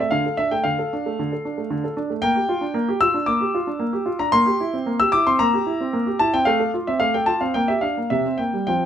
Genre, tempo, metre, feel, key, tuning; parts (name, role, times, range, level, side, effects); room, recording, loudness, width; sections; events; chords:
classical-period piano sonatina; 112 BPM; 4/4; rubato; A4 = 441 Hz
warm grand piano; solo; 0.0-8.9 s; C3 to E6; -19 LUFS; equal
light reverb; -19 LUFS; side -9 dB against mid
0.0-8.9 A section
0.1 Dm; 2.2 Gm7/Bb; 4.3 C7/Bb; 6.5 F/A; 7.6 Gm7/Bb; 8.1 C7